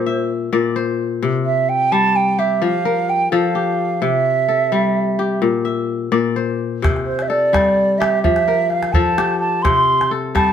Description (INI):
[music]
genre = west african traditional, West African string and xylophone music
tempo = 86 BPM (dotted quarters)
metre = 12/8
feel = straight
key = C mixolydian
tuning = A4 = 440 Hz
[part]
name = mellow hollow silver concert flute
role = melody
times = 0.0-10.5 s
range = C5 to C6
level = -17 LUFS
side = right 4 dB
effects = none
[part]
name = kora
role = arpeggios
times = 0.0-10.5 s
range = Bb2 to E5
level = -18 LUFS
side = left 5 dB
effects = none
[part]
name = calabash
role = percussion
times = 6.8-10.5 s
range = none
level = -21 LUFS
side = equal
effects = none
[sound]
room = moderate stone room reverb, RT60 0.9 s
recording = band playing live in one room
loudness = -15 LUFS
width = side -8 dB against mid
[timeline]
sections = 0.0-10.5 A section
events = none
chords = 0.0 Bb; 1.2 C5; 2.6 F; 4.0 C; 5.4 Bb; 6.8 C5; 8.2 F; 9.6 C5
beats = 0.53 | 1.23 1.93 2.63 3.33 | 4.03 4.73 5.43 6.13 | 6.84 7.54 8.24 8.94 | 9.65 10.35